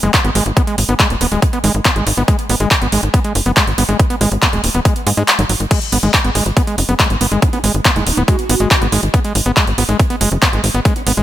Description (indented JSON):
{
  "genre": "psychedelic trance",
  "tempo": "140 BPM",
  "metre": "4/4",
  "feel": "straight",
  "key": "G# minor",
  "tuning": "A4 = 440 Hz",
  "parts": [
    { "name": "overdriven acid bass", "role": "riff", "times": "0.0-11.2 s", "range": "F#3 to B3", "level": "-19 LUFS", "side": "equal", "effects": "distortion, auto-pan, cassette tape, sidechain pumping, tape echo" },
    { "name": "tight sequencer bass", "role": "bass", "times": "0.0-11.2 s", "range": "D#1 to G#2", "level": "-17 LUFS", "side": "equal", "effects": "none" },
    { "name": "big-room dance drum kit", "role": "drums", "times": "0.0-11.2 s", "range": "crash cymbal, handclaps, hi-hat", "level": "-17 LUFS", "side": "equal", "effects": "none" },
    { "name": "electronic kick drum", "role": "drums", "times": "0.1-10.9 s", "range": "none", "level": "-15 LUFS", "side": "equal", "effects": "overdrive" },
    { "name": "vowel-sweep wobble bass", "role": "second line", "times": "7.0-11.0 s", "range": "B3 to F#4", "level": "-25 LUFS", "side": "right 3 dB", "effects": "chorus, sidechain pumping, high-pass filter, ping-pong delay" }
  ],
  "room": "light reverb, digital ambience",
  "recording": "none",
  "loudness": "-12 LUFS",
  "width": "side -13 dB against mid",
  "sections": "0.0-11.2 A section",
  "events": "kick drops out 5.3-5.7",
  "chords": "0.0 G#5",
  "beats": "0.14 | 0.57 0.99 1.42 1.85 | 2.28 2.71 3.14 3.57 | 4.00 4.42 4.85 5.28 | 5.71 6.14 6.57 7.00 | 7.42 7.85 8.28 8.71 | 9.14 9.57 9.99 10.42 | 10.85"
}